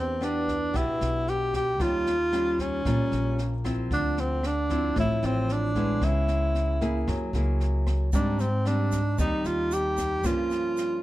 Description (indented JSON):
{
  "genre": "bossa nova",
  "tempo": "114 BPM",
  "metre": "4/4",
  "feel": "straight",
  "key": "unclear",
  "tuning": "A4 = 439 Hz",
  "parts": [
    { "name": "breathy tenor saxophone", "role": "melody", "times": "0.0-11.0 s", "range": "C4 to G4", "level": "-27 LUFS", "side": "right 1 dB", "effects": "none" },
    { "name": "nylon-string guitar", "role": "accompaniment", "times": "0.0-11.0 s", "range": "G2 to Ab4", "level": "-30 LUFS", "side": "left 1 dB", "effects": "none" },
    { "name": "upright bass", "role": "bass", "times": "0.0-11.0 s", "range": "A1 to Ab2", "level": "-29 LUFS", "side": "equal", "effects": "none" },
    { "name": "jazz brush drum kit", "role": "drums", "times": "0.2-10.8 s", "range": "kick drum, rim click, snare drum", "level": "-34 LUFS", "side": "equal", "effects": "none" },
    { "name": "tube shaker", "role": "percussion", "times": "8.1-11.0 s", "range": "none", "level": "-44 LUFS", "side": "right 6 dB", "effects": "none" }
  ],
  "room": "light reverb",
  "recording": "dark, warm production",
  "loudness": "-24 LUFS",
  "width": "side -16 dB against mid",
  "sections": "0.0-11.0 A section",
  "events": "none",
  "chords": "0.0 Em7; 1.8 Eb9; 3.9 Dm9; 6.0 Dbm7; 7.1 F#9; 8.1 Abmaj7; 10.2 Gm7b5",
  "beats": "0.21 0.74 1.27 | 1.80 2.32 2.85 3.38 | 3.91 4.43 4.96 5.49 | 6.02 6.54 7.07 7.60 | 8.13 8.66 9.18 9.71 | 10.24 10.77"
}